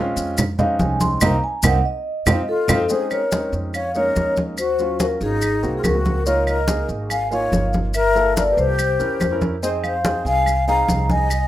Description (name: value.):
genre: Afro-Cuban jazz.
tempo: 143 BPM.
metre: 4/4.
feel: straight.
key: Bb minor.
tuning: A4 = 440 Hz.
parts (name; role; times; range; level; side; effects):
warm baby grand piano; accompaniment; 0.0-11.3 s; Gb3 to Bb4; -26 LUFS; right 1 dB; none.
upright bass; bass; 0.0-11.5 s; G1 to F2; -24 LUFS; right 1 dB; none.
maracas; percussion; 0.2-11.5 s; none; -30 LUFS; left 4 dB; none.
claves; percussion; 0.4-11.5 s; none; -27 LUFS; right 4 dB; none.
congas; percussion; 0.4-11.5 s; none; -22 LUFS; equal; none.
vibraphone with medium mallets; melody; 0.6-11.5 s; Ab4 to C6; -22 LUFS; left 1 dB; none.
breathy mellow silver concert flute; second line; 2.5-11.5 s; Eb4 to F5; -24 LUFS; left 3 dB; none.
room: wet studio reverb, RT60 0.6 s.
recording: rough home demo mix.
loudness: -17 LUFS.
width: side -13 dB against mid.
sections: 0.0-2.9 A section; 2.9-11.5 B section.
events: vibraphone solo 0.0-2.9; band accent 1.2-2.9; drum fill 2.3-2.9.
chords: 0.0 Bbm11 (rootless); 1.2 Cm7b5; 2.1 F7; 2.9 Bbm11; 4.6 Ebm9; 5.4 Ab7; 6.3 Db69; 7.9 Gm7; 8.8 C7b9; 9.6 Fm7.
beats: 0.38 0.80 | 1.22 1.64 2.06 2.48 | 2.90 3.32 3.74 4.16 | 4.58 5.00 5.42 5.85 | 6.27 6.69 7.11 7.53 | 7.95 8.37 8.79 9.21 | 9.63 10.05 10.47 10.89 | 11.31.